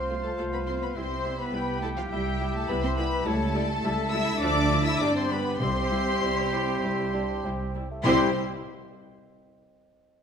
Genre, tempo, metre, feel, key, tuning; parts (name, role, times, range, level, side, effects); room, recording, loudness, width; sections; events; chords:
quick classical-period movement for symphony orchestra; 101 BPM; 4/4; straight; C major; A4 = 440 Hz
dark studio violin section; melody; 0.0-8.4 s; F5 to E6; -32 LUFS; left 3 dB
bright clarinet; second line; 0.0-8.3 s; E4 to G5; -37 LUFS; left 2 dB
dark studio violin section; second line; 0.0-8.4 s; F4 to E5; -36 LUFS; left 2 dB
small flute group; second line; 0.0-8.4 s; F4 to E5; -35 LUFS; left 3 dB
dark French horn section; sustained chords; 0.0-8.3 s; F3 to F4; -35 LUFS; left 2 dB
mellow trumpet section; stabs; 0.0-8.3 s; G4 to C5; -33 LUFS; right 2 dB
dark studio double bass section; bass; 0.0-8.4 s; G1 to D2; -32 LUFS; right 3 dB
warm studio cello section; bass; 0.0-8.4 s; F3 to E4; -32 LUFS; right 1 dB
rich studio viola section; accompaniment; 0.1-8.4 s; F3 to F4; -34 LUFS; left 1 dB
timpani; percussion; 5.6-8.3 s; C3; -34 LUFS; left 1 dB
warm bassoon; accompaniment; 6.2-8.3 s; G3 to D4; -36 LUFS; equal
wet scoring stage reverb, RT60 1.6 s; minimal, uncompressed stereo recording; -24 LUFS; side -7 dB against mid
0.0-8.1 A section; 8.1-10.2 B section
0.0 F/C; 1.0 C; 3.3 A7/C#; 4.4 Dm; 5.0 G; 5.6 C